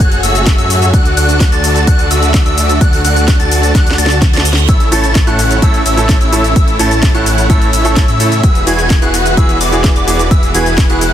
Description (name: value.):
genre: EDM, festival progressive house.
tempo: 128 BPM.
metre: 4/4.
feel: straight.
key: A major.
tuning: A4 = 438 Hz.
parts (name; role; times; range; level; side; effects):
clear studio string section; sustained chords; 0.0-11.1 s; A2 to F#4; -21 LUFS; left 2 dB; sidechain pumping.
plucky unison lead; arpeggios; 0.0-11.1 s; D6 to A6; -18 LUFS; equal; sidechain pumping, ping-pong delay.
dense compressed supersaw; riff; 0.0-11.1 s; C#4 to A5; -17 LUFS; right 1 dB; cassette tape, sidechain pumping, ping-pong delay.
wide detuned saw bass; bass; 0.0-11.1 s; E1 to A2; -15 LUFS; equal; chorus, sidechain pumping.
electronic kick drum; drums; 0.0-10.9 s; none; -10 LUFS; equal; overdrive.
house drum kit; drums; 0.0-11.1 s; hi-hat, shaker, snare drum; -18 LUFS; left 1 dB; overdrive.
reverse cymbal; sound effects; 4.3-4.7 s; none; -22 LUFS; right 8 dB; none.
bright concert grand piano; accompaniment; 4.9-11.0 s; A2 to A4; -18 LUFS; right 2 dB; sidechain pumping, ping-pong delay.
room: digital ambience.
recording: dense, heavily limited modern master.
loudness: -8 LUFS.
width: side -11 dB against mid.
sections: 0.0-11.1 A section.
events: drum fill 3.7-4.7; reverse cymbal 4.3-4.7.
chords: 0.0 F#madd9; 0.9 D; 4.7 A; 8.4 Eadd9.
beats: 0.00 0.47 | 0.94 1.41 1.87 2.34 | 2.81 3.28 3.75 4.22 | 4.69 5.16 5.62 6.09 | 6.56 7.03 7.50 7.97 | 8.44 8.90 9.37 9.84 | 10.31 10.78.